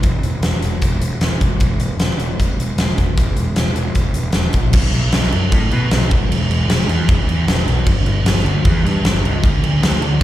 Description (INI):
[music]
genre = hard rock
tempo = 154 BPM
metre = 4/4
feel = straight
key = E minor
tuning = A4 = 440 Hz
[part]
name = fuzz picked electric bass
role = bass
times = 0.0-10.2 s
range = E1 to D3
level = -17 LUFS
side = equal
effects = overdrive
[part]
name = huge arena drum kit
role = drums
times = 0.0-10.2 s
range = crash cymbal, hi-hat, kick drum, snare drum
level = -17 LUFS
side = equal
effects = none
[sound]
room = little or no reverb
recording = live gig heard through the venue's PA, recital hall reverb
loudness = -14 LUFS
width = side -14 dB against mid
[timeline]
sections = 0.0-4.7 A section; 4.7-10.2 B section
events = none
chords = none